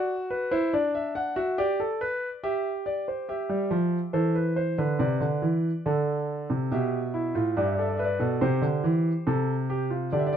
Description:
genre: classical, baroque-style 3-part fugue for grand piano.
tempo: 70 BPM.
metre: 4/4.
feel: straight.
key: C major.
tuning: A4 = 441 Hz.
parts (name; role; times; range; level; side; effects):
clear concert grand piano; solo; 0.0-10.4 s; G2 to F#5; -24 LUFS; right 1 dB; none.
room: light reverb.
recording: dark, warm production.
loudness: -24 LUFS.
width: side -8 dB against mid.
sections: 0.0-3.3 A section; 3.3-10.4 B section.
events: none.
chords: 0.0 D7; 1.6 G; 3.3 C; 5.0 D5/C; 6.7 G7; 8.4 C.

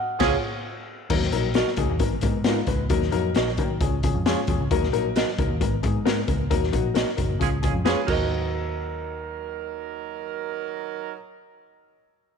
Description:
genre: uptempo 1960s-style soul.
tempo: 133 BPM.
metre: 4/4.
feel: straight.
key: Eb minor.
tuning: A4 = 442 Hz.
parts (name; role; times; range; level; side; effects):
warm horn section; second line; 0.2-0.3, 7.4-11.1 s; Gb3 to Bb4; -30 LUFS; right 13 dB; none.
dark upright piano; accompaniment; 0.2-11.2 s; F3 to Db5; -27 LUFS; left 10 dB; none.
semi-hollow electric guitar; stabs; 0.2-11.6 s; Cb4 to Eb5; -30 LUFS; right 11 dB; none.
vintage muted picked electric bass; bass; 0.2-11.1 s; Gb1 to Eb3; -28 LUFS; right 2 dB; none.
raw garage drum kit; drums; 0.2-8.2 s; crash cymbal, hi-hat, kick drum, snare drum; -26 LUFS; left 2 dB; none.
room: light reverb, small room ambience.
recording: 1960s-style stereo with parts hard left and right.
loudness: -22 LUFS.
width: side -6 dB against mid.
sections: 0.0-1.1 A section; 1.1-8.3 B section; 8.3-11.9 C section.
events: band accent 0.0-1.1, 6.5-8.3.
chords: 0.2 Db; 1.1 Ebm; 2.0 Abmadd9; 2.9 Ebm; 3.8 Db; 4.7 Ebm; 5.6 Abmadd9; 6.5 Ebm; 7.4 Db; 8.1 Ebm.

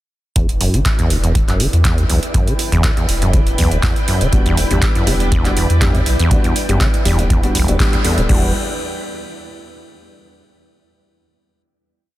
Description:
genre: acid house.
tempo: 121 BPM.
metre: 4/4.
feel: swing 53% on 16ths.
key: E minor.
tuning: A4 = 442 Hz.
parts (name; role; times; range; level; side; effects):
string machine, full ensemble; sustained chords; 0.4-8.5 s; E4 to G5; -25 LUFS; equal; ensemble chorus, sidechain pumping.
acid bass, saw; riff; 0.4-8.5 s; E1 to E3; -19 LUFS; equal; none.
warm sub bass; bass; 0.4-8.5 s; D1 to E2; -18 LUFS; equal; sidechain pumping.
booming analog drum machine; drums; 0.4-8.4 s; crash cymbal, handclaps, hi-hat; -23 LUFS; right 1 dB; overdrive.
electronic kick drum; drums; 0.4-8.4 s; none; -17 LUFS; equal; none.
warm grand piano; stabs; 4.3-8.5 s; G3 to A4; -23 LUFS; left 2 dB; analog delay.
room: light reverb.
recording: dense, heavily limited modern master.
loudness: -13 LUFS.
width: side -16 dB against mid.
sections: 0.4-8.3 groove; 8.3-10.3 final chord.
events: band accent 7.8.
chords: 0.4 Em7.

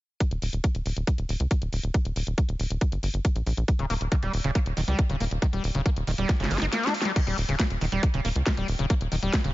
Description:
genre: psychedelic trance.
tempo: 138 BPM.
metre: 4/4.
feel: straight.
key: unclear.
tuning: A4 = 436 Hz.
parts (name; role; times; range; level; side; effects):
drum and bass drum kit; drums; 0.2-9.5 s; crash cymbal, hi-hat, snare drum; -32 LUFS; equal; overdrive.
electronic kick drum; drums; 0.2-9.4 s; none; -23 LUFS; equal; overdrive.
tight sequencer bass; bass; 0.3-9.5 s; Eb1 to Db2; -27 LUFS; equal; none.
screaming distorted acid line; riff; 3.8-9.5 s; Db3 to Eb4; -29 LUFS; moving between left 4 dB and right 4 dB; distortion, chorus, auto-pan, sidechain pumping, digital delay.
room: digital ambience.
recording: nothing above 7.6 kHz.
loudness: -24 LUFS.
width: side -17 dB against mid.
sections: 0.2-7.2 A section; 7.2-9.5 B section.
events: drum fill 6.3-7.2; kick drops out 6.7-7.2.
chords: 0.2 Eb5.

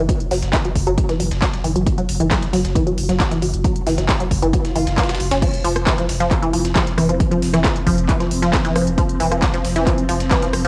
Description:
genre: driving peak-time techno.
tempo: 135 BPM.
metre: 4/4.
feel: straight.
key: unclear.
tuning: A4 = 439 Hz.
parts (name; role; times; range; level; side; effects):
resonant blip pluck; riff; 0.0-10.7 s; E3 to Gb4; -23 LUFS; equal; phaser, tube saturation, sidechain pumping, cassette tape, tape echo.
saturated sub bass; bass; 0.0-10.7 s; F1 to Gb1; -26 LUFS; equal; tube saturation, sidechain pumping, low-pass filter.
dusty soul sampler-style drum kit; drums; 0.1-10.6 s; hi-hat, snare drum; -34 LUFS; equal; high-pass filter on snare, studio reverb, cassette tape, high-pass filter on hats.
electronic kick drum; drums; 0.1-10.4 s; none; -22 LUFS; equal; overdrive, studio reverb, cassette tape.
techno drum kit; drums; 0.1-10.7 s; crash cymbal, handclaps, hi-hat, rim click; -27 LUFS; equal; overdrive, studio reverb, cassette tape.
swell; sound effects; 4.7-5.4 s; none; -32 LUFS; equal; none.
swarming drone; drone; 6.6-10.7 s; F3 to C4; -28 LUFS; equal; built-in reverb, sidechain pumping, cassette tape.
room: light reverb, digital ambience.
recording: home recording on cassette.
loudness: -18 LUFS.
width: mono.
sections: 0.0-5.4 A section; 5.4-10.7 B section.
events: filter sweep on synth arpeggio sound 0.0-5.4; swell 4.7-5.4; drop 5.4-10.7.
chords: 0.0 Gb5; 5.4 F5.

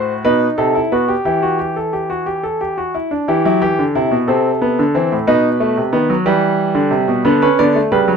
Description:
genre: classical, baroque-style 3-part fugue for grand piano.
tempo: 60 BPM (dotted quarters).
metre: 6/8.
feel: straight.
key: E minor.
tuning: A4 = 437 Hz.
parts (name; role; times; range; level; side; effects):
bright concert grand piano; solo; 0.0-8.2 s; A2 to D5; -13 LUFS; equal; none.
room: light reverb.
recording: minimal, uncompressed stereo recording.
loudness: -13 LUFS.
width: side -6 dB against mid.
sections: 0.0-3.3 A section; 3.3-8.2 B section.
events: none.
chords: 0.2 B7; 1.3 Em; 4.3 Am/C; 5.3 B7; 6.3 Em; 7.3 Bm/D.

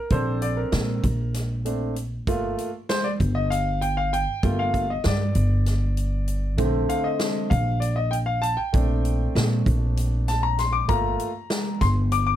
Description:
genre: progressive instrumental, band music in an uneven meter.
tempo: 195 BPM (eighths).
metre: 7/8.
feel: straight.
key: Bb major.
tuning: A4 = 441 Hz.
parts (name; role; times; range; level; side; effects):
clear concert grand piano; accompaniment; 0.0-12.4 s; D3 to D6; -26 LUFS; left 1 dB; none.
upright bass; bass; 0.1-12.4 s; G1 to Bb2; -23 LUFS; equal; none.
swinging big-band drum kit; drums; 0.1-12.3 s; hi-hat, kick drum, snare drum; -28 LUFS; right 1 dB; none.
room: little or no reverb.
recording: close, detailed microphones.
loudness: -21 LUFS.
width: side -11 dB against mid.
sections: 0.0-12.4 A section.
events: grand piano solo 0.0-12.4.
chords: 0.0 Bbmaj7; 2.3 Gm7; 6.6 Bbmaj7; 10.9 Gm7.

